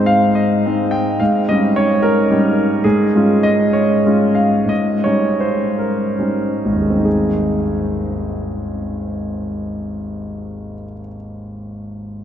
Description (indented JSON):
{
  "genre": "classical, romantic character piece for solo piano",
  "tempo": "44-75 BPM (dotted quarters)",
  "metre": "6/8",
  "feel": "rubato",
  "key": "Ab major",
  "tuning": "A4 = 440 Hz",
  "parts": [
    { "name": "clear concert grand piano", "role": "solo", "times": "0.0-12.2 s", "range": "Ab1 to G5", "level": "-15 LUFS", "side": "equal", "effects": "none" }
  ],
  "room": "wet cathedral reverb, RT60 6.3 s",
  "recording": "in a vast, echoing space",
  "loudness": "-14 LUFS",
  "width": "side -9 dB against mid",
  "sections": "0.0-7.0 A section; 7.0-12.1 B section",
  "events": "slowing down 2.0-7.0",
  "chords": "0.0 Ab; 1.2 Eb7/Ab; 2.8 Db/Ab; 4.7 Eb7/Ab; 7.0 Ab",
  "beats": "0.35 | 1.20 2.03 | 2.84 3.73 | 4.70 5.78 | 7.05 8.30 | 9.55 10.80"
}